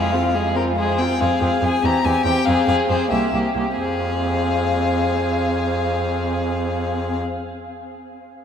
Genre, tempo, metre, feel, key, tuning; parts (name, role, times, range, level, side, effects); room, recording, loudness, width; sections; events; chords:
quick classical-period movement for string quartet; 92 BPM (dotted quarters); 6/8; straight; F minor; A4 = 440 Hz
rich violin; melody; 0.0-7.2 s; Bb4 to Bb5; -24 LUFS; left 4 dB
rich violin; second line; 0.0-7.2 s; F4 to Ab4; -24 LUFS; left 3 dB
rich viola; accompaniment; 0.0-7.2 s; Ab3 to C4; -23 LUFS; equal
clear cello; bass; 0.0-7.2 s; C2 to F2; -25 LUFS; right 2 dB
wet cathedral reverb, RT60 5.8 s; in a vast, echoing space; -18 LUFS; side -8 dB against mid
0.0-1.2 A section; 1.2-3.8 B section; 3.8-6.4 C section
slowing down 0.6-3.8
0.0 Fm; 1.8 C/E; 2.5 Fm; 3.1 C5; 3.8 Fm